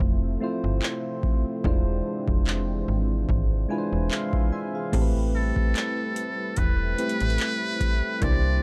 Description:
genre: contemporary R&B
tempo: 73 BPM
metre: 4/4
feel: swing 54% on 16ths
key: A minor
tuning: A4 = 440 Hz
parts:
  - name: soft electric-piano-like synth keys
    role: accompaniment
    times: 0.0-8.6 s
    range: G#3 to C6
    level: -32 LUFS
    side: equal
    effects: chorus
  - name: warm analog pad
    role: sustained chords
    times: 0.0-8.6 s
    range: C3 to E5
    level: -37 LUFS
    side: equal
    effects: chorus, sidechain pumping
  - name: slap-like FM bass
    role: bass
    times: 0.0-8.6 s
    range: E1 to C2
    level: -28 LUFS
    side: equal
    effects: none
  - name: booming analog drum machine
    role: drums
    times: 0.0-8.4 s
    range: crash cymbal, handclaps, hi-hat, kick drum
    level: -27 LUFS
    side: equal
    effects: overdrive
  - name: trumpet with metal mute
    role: melody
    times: 5.3-8.6 s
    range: A4 to D5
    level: -31 LUFS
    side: equal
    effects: tape echo
room: little or no reverb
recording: dark, warm production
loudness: -25 LUFS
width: mono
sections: 0.0-4.9 A section; 4.9-8.6 B section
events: synth keys fill 3.3-4.9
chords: 0.0 Fmaj7; 1.6 E7b9b13; 4.9 Am9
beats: 0.00 0.82 | 1.64 2.47 3.29 4.11 | 4.93 5.75 6.58 7.40 | 8.22

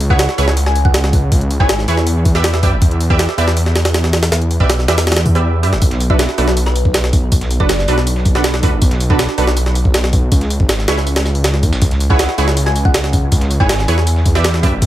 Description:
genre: drum and bass, jungle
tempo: 160 BPM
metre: 4/4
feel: straight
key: unclear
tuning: A4 = 441 Hz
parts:
  - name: detuned saw bass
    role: bass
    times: 0.0-14.9 s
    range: E1 to G2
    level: -15 LUFS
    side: equal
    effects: tube saturation
  - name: jungle sampler-style drum kit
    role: drums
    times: 0.0-14.9 s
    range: hi-hat, kick drum, snare drum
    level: -15 LUFS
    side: equal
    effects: none
  - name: thumb-piano-like synth pluck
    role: melody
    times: 0.1-2.1, 6.1-8.1, 12.1-14.1 s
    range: B4 to G#5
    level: -24 LUFS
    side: left 1 dB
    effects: analog chorus, dub echo
  - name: orchestra-hit-like synth stab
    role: stabs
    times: 0.1-14.7 s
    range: D4 to E5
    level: -20 LUFS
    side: right 4 dB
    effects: built-in reverb, dub echo
  - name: electronic tambourine and snare drum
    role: drums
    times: 5.8-14.9 s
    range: none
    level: -27 LUFS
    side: right 3 dB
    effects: high-pass filter on perc, high-pass filter on snare
room: digital ambience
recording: none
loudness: -12 LUFS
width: side -13 dB against mid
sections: 0.0-14.9 A section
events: none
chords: 0.0 C#m7; 2.1 Em7; 5.8 Bm7; 10.3 C#m7; 14.1 Em7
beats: 0.19 0.57 0.94 | 1.32 1.69 2.07 2.44 | 2.82 3.19 3.57 3.94 | 4.32 4.69 5.07 5.44 | 5.82 6.19 6.57 6.94 | 7.32 7.69 8.07 8.44 | 8.82 9.19 9.57 9.94 | 10.32 10.69 11.07 11.44 | 11.82 12.19 12.57 12.94 | 13.32 13.69 14.07 14.44 | 14.82

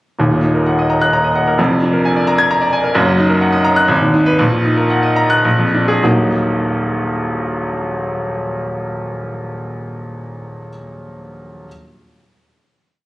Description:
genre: classical, virtuoso piano study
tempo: 102-132 BPM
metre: 3/4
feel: rubato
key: Eb minor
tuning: A4 = 440 Hz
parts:
  - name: bright baby grand piano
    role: solo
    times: 0.2-11.7 s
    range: Eb1 to Ab6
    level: -14 LUFS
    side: equal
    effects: none
room: moderate recital hall reverb, RT60 1.6 s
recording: recorded on a phone in the room, studio ambience, compression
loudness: -13 LUFS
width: side -17 dB against mid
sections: 0.2-6.0 A section; 6.0-9.4 final chord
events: slowing down 2.3-6.0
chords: 0.2 Ebm; 1.6 Bb7/F; 3.0 Ebm/Gb; 3.9 Abm; 4.4 Ebm/Bb; 5.4 Bb7; 6.0 Ebm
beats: | 0.19 0.66 1.13 | 1.59 2.05 2.50 | 2.96 3.42 3.90 | 4.40 4.91 5.45 | 6.02 6.59 7.17 | 7.73 8.30 8.86

